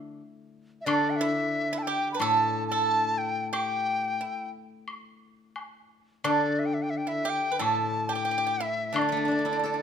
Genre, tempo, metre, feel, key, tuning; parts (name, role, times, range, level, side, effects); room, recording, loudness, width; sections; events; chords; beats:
chinese traditional, Chinese chamber ensemble; 90 BPM; 4/4; rubato; A4 = 441 Hz
steel-string zither; accompaniment; 0.0-9.8 s; A2 to A4; -31 LUFS; left 3 dB
mellow large dizi; melody; 0.8-9.8 s; D5 to B5; -28 LUFS; left 2 dB
pipa; second line; 0.9-9.8 s; D4 to B4; -30 LUFS; right 10 dB
woodblock; percussion; 0.9-9.1 s; -35 LUFS; left 2 dB
moderate recital hall reverb, RT60 1.3 s; close, detailed microphones; -25 LUFS; side -8 dB against mid
0.0-9.8 A section
0.21 | 0.87 1.53 2.20 2.87 | 3.53 4.20 4.87 5.55 | 6.24 6.92 7.60 8.28 | 8.95 9.62